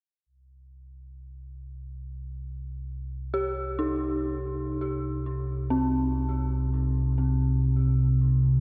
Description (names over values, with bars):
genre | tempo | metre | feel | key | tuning
dark ambient drone | free time | none | none | C minor | A4 = 437 Hz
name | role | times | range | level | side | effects
deep rumbling drone | drone | 0.9-8.6 s | C2 to C3 | -29 LUFS | equal | built-in reverb, subtle chorus
dark detuned synth bell | arpeggios | 3.3-8.6 s | C4 to G4 | -32 LUFS | equal | chorus, tape echo
room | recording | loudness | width
moderate cathedral reverb, RT60 5.7 s | none | -27 LUFS | mono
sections
0.3-8.6 A section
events
none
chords
0.3 Cm